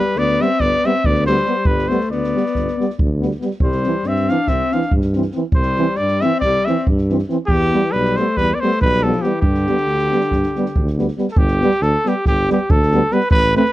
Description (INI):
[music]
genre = balkan folk, Balkan brass band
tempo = 278 BPM (eighths)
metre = 9/8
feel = straight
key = G mixolydian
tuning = A4 = 440 Hz
[part]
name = warm trumpet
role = melody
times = 0.0-13.7 s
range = G4 to F5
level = -19 LUFS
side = right 1 dB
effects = none
[part]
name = warm alto saxophone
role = second line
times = 0.0-11.0 s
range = D3 to D4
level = -22 LUFS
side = left 5 dB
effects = none
[part]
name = mellow French horn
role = accompaniment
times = 0.0-13.6 s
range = B3 to C4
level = -22 LUFS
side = left 4 dB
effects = none
[part]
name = mellow euphonium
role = accompaniment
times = 0.0-13.6 s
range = E3 to A3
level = -21 LUFS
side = right 5 dB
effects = none
[part]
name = mellow tuba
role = bass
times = 0.2-13.6 s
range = G1 to G2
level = -20 LUFS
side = equal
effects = none
[part]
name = open jazz drum kit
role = percussion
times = 0.2-13.7 s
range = kick drum, snare drum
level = -19 LUFS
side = equal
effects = none
[sound]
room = little or no reverb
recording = dry, close 1970s-style studio recording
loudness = -15 LUFS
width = side -15 dB against mid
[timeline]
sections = 0.0-11.4 A section; 11.4-13.7 B section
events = none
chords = 0.0 G; 3.6 C; 7.5 Em; 9.4 G